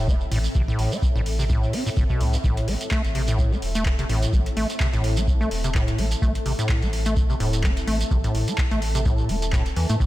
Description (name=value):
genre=acid house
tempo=127 BPM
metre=4/4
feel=swing 56% on 16ths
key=A minor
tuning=A4 = 440 Hz
part: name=deep acid bass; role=riff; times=0.0-10.1 s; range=G2 to C4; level=-26 LUFS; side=equal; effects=tube saturation, diffuse ambient delay
part: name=round analog bass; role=bass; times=0.0-10.1 s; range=E1 to A2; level=-26 LUFS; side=equal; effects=sidechain pumping
part: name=ethereal airy pad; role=texture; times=0.0-10.1 s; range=C4 to A5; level=-33 LUFS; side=left 1 dB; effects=ensemble chorus, built-in reverb, tremolo, sidechain pumping
part: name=electronic kick drum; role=drums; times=0.1-10.1 s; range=none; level=-22 LUFS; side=equal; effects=studio ambience
part: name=shekere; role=percussion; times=0.1-10.1 s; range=none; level=-37 LUFS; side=right 4 dB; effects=none
part: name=booming analog drum machine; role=drums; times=0.3-10.0 s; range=handclaps, hi-hat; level=-32 LUFS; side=equal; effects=studio ambience
room=light reverb, digital ambience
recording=none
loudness=-20 LUFS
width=side -16 dB against mid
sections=0.0-10.1 A section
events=fade-in on ambient pad 0.0-10.1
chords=0.0 Am7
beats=0.08 | 0.55 1.02 1.50 1.97 | 2.44 2.91 3.39 3.86 | 4.33 4.80 5.28 5.75 | 6.22 6.69 7.17 7.64 | 8.11 8.58 9.06 9.53 | 10.00